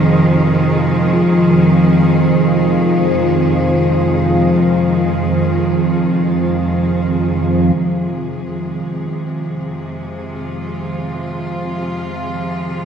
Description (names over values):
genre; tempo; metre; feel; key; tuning
dark ambient drone; free time; none; none; F minor; A4 = 440 Hz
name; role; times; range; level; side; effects
bright symphonic cello section; sustained chords; 0.0-12.8 s; F2 to Ab4; -22 LUFS; equal; shimmer reverb
quartz singing bowl; arpeggios; 0.0-6.9 s; Eb3 to F4; -19 LUFS; right 1 dB; diffuse ambient delay
organ-like drone; drone; 0.0-12.8 s; F2 to F3; -16 LUFS; equal; ensemble chorus, built-in reverb
room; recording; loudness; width
wet cathedral reverb, RT60 5.5 s; dark, warm production; -13 LUFS; side -7 dB against mid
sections
0.0-7.8 A section; 7.8-12.8 B section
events
fade-out on cello section 0.0-7.8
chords
0.0 Fm7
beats
free time